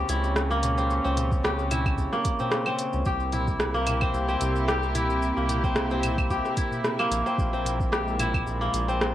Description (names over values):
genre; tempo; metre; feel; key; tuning
organic downtempo; 111 BPM; 4/4; swing 54% on 16ths; C phrygian dominant; A4 = 439 Hz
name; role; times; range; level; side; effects
dark studio string section; sustained chords; 0.0-9.1 s; Bb2 to G4; -32 LUFS; right 1 dB; sidechain pumping, cassette tape
kora; arpeggios; 0.0-9.1 s; Bb3 to G4; -27 LUFS; left 1 dB; cassette tape, analog delay
round analog bass; bass; 0.0-9.1 s; Bb1 to Db2; -29 LUFS; equal; sidechain pumping
organic electronic drum kit; drums; 0.1-9.1 s; claves, hi-hat, rim click, shaker; -30 LUFS; equal; overdrive
darbuka; percussion; 0.2-9.0 s; none; -38 LUFS; left 1 dB; none
electronic kick drum; drums; 1.3-8.4 s; none; -28 LUFS; equal; overdrive
room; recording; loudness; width
moderate spring reverb, RT60 1.8 s; home recording on cassette; -23 LUFS; side -12 dB against mid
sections
0.0-9.1 A section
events
none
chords
0.0 Dbmmaj7; 3.1 C7; 7.4 C7b13/Bb